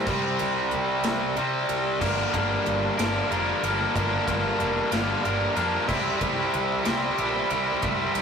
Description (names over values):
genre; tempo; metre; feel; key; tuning
quiet-loud alternative rock; 62 BPM (dotted quarters); 6/8; straight; G dorian; A4 = 442 Hz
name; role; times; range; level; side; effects
high-gain distorted guitar; riff; 0.0-8.2 s; G2 to Bb4; -24 LUFS; equal; distortion
fuzz picked electric bass; bass; 0.0-8.2 s; F1 to C3; -32 LUFS; equal; overdrive
big rock drum kit; drums; 0.1-8.2 s; crash cymbal, kick drum, ride cymbal, snare drum; -32 LUFS; equal; none
room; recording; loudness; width
moderate booth ambience, RT60 0.2 s; rough rehearsal-room recording, warm saturation; -22 LUFS; side -6 dB against mid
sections
0.1-2.0 A section; 2.0-8.2 B section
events
none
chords
0.1 C5; 2.0 Gm; 5.9 C